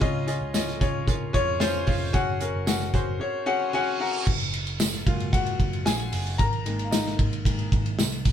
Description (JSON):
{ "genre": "piano-driven pop", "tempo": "113 BPM", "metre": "4/4", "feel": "straight", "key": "unclear", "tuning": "A4 = 440 Hz", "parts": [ { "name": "warm grand piano", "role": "accompaniment", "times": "0.0-8.3 s", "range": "Db3 to Bb5", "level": "-27 LUFS", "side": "left 2 dB", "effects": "none" }, { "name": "picked electric bass", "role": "bass", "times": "0.0-8.3 s", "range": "F1 to F2", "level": "-30 LUFS", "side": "right 1 dB", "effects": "none" }, { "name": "modern studio drum kit", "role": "drums", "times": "0.0-8.3 s", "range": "crash cymbal, hi-hat, kick drum, ride cymbal, snare drum", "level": "-25 LUFS", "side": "equal", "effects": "none" }, { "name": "tambourine", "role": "percussion", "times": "0.5-8.1 s", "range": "none", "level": "-34 LUFS", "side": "right 8 dB", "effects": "none" }, { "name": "reverse cymbal", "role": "sound effects", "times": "3.5-4.3 s", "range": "none", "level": "-34 LUFS", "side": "right 4 dB", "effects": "none" } ], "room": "moderate studio ambience, RT60 0.5 s", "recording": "band playing live in one room", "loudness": "-23 LUFS", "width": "side -9 dB against mid", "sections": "0.0-4.3 A section; 4.3-8.3 B section", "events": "grand piano fill 3.2-4.3; reverse cymbal 3.5-4.3; grand piano solo 4.3-8.3", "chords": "0.0 Dbadd9; 2.1 Gbsus2; 4.3 Gbadd9; 6.4 Absus2" }